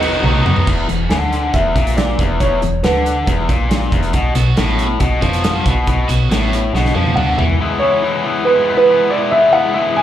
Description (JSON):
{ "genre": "indie rock", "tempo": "139 BPM", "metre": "4/4", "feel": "straight", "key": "E mixolydian", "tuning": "A4 = 440 Hz", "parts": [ { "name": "dark upright piano", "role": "melody", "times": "0.0-3.9, 7.2-10.0 s", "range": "B4 to G#5", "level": "-16 LUFS", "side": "right 1 dB", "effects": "slapback echo" }, { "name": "biting overdriven guitar", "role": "riff", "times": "0.0-10.0 s", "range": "E2 to E4", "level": "-18 LUFS", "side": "left 3 dB", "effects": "slapback echo" }, { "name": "overdriven electric guitar", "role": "riff", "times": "0.0-0.7, 4.4-7.5 s", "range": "B2 to F#4", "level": "-22 LUFS", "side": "right 8 dB", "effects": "lush chorus, slapback echo, tape echo" }, { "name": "woody FM bass", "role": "bass", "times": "0.0-7.6 s", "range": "E1 to F#2", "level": "-19 LUFS", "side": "equal", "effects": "none" }, { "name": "loose indie drum kit", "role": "drums", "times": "0.0-7.6 s", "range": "crash cymbal, hi-hat, kick drum, ride cymbal, snare drum, toms", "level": "-19 LUFS", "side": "right 1 dB", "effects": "none" } ], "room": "moderate club ambience, RT60 0.5 s", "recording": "live gig heard through the venue's PA, club reverb", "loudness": "-13 LUFS", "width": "side -11 dB against mid", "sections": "0.7-7.6 A section; 7.6-10.0 B section", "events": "drum fill 0.2-0.7, 6.7-7.6", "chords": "0.0 B; 0.7 E5; 4.1 B5; 7.6 E", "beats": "0.25 | 0.68 1.11 1.54 1.98 | 2.41 2.84 3.27 3.71 | 4.14 4.57 5.01 5.44 | 5.87 6.30 6.74 7.17 | 7.60 8.03 8.46 8.89 | 9.32 9.75" }